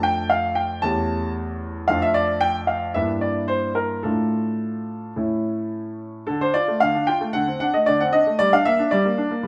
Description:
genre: classical-period piano sonatina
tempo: 111 BPM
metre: 4/4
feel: uneven beats, rubato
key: D minor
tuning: A4 = 441 Hz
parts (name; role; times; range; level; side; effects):
- clear concert grand piano; solo; 0.0-9.5 s; E2 to A5; -22 LUFS; equal; none
room: wet stone room reverb, RT60 1.1 s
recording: none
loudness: -22 LUFS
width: mono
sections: 0.0-6.3 A section; 6.3-9.5 B section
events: none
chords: 0.0 Dm/F; 0.8 A7/E; 1.9 Dm/F; 3.0 Em7b5/G; 4.0 Dm/A; 5.2 A; 6.3 Dm; 7.3 D5; 8.4 Gm

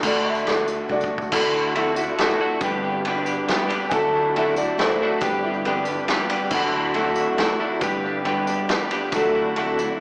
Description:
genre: folk rock and heartland rock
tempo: 139 BPM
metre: 3/4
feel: straight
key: unclear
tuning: A4 = 440 Hz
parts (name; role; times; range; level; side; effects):
- dark upright piano; second line; 0.0-1.1, 3.9-6.3 s; E4 to A5; -27 LUFS; equal; digital delay
- picked steel-string acoustic guitar; accompaniment; 0.0-10.0 s; D3 to B4; -23 LUFS; equal; slapback echo
- mellow tonewheel organ; sustained chords; 0.0-10.0 s; D4 to F#5; -34 LUFS; equal; none
- twelve-string electric guitar; riff; 0.0-10.0 s; G2 to G4; -26 LUFS; equal; none
- fingered electric bass; bass; 0.0-9.9 s; G1 to D2; -39 LUFS; equal; none
- vintage drum kit; drums; 0.0-9.7 s; crash cymbal, kick drum, ride cymbal, snare drum; -25 LUFS; equal; none
- tambourine; percussion; 0.0-9.9 s; none; -41 LUFS; equal; none
room: moderate lush hall reverb, RT60 1.9 s, small room reverb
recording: live gig heard through the venue's PA, club reverb, small speaker sound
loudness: -19 LUFS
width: side -33 dB against mid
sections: 0.0-1.3 A section; 1.3-10.0 B section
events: drum fill 0.9-1.3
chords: 0.0 D; 1.3 Dadd9; 2.6 G; 3.9 Dadd9; 5.2 G; 6.5 Dadd9; 7.8 G; 9.1 Dadd9

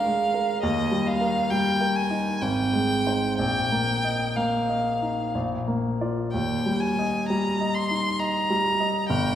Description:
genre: classical, romantic duo for violin and grand piano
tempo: 60-70 BPM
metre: 3/4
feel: rubato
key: Eb major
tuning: A4 = 440 Hz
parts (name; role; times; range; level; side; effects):
- rich violin; melody; 0.0-9.4 s; Eb5 to C6; -26 LUFS; equal; none
- clear baby grand piano; accompaniment; 0.0-9.4 s; G1 to Eb5; -24 LUFS; equal; none
room: wet concert hall reverb, RT60 1.9 s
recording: heard from further back in the room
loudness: -22 LUFS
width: side -10 dB against mid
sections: 0.0-9.4 A section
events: none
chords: 0.0 Bb7/Eb; 0.6 Eb; 2.4 Ab; 3.4 Bbsus4; 5.3 Bb; 6.3 Eb

